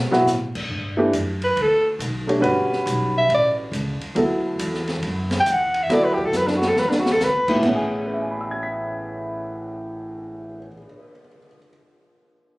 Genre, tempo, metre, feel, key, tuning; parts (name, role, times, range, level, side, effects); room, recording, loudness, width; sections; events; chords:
modal jazz; 139 BPM; 4/4; swing 66% on 8ths; A4 = 442 Hz
upright bass; bass; 0.0-10.7 s; G1 to B2; -29 LUFS; equal
warm upright piano; accompaniment; 0.1-11.7 s; A2 to B6; -22 LUFS; equal
open jazz drum kit; drums; 0.1-11.0 s; crash cymbal, cymbal swell, hi-hat, kick drum, ride cymbal, snare drum; -29 LUFS; equal
warm soprano saxophone; melody; 1.4-7.6 s; D4 to G5; -18 LUFS; equal; plate reverb
moderate small room reverb, RT60 0.5 s; recorded on a phone in the room, club ambience, compression; -19 LUFS; side -22 dB against mid
0.7-7.6 A section; 7.6-11.1 B section
drum fill 0.0, 6.3-7.2; soprano saxophone solo 0.7-7.6
0.0 Gmaj9 (rootless); 0.7 Gmaj9; 7.6 Amaj9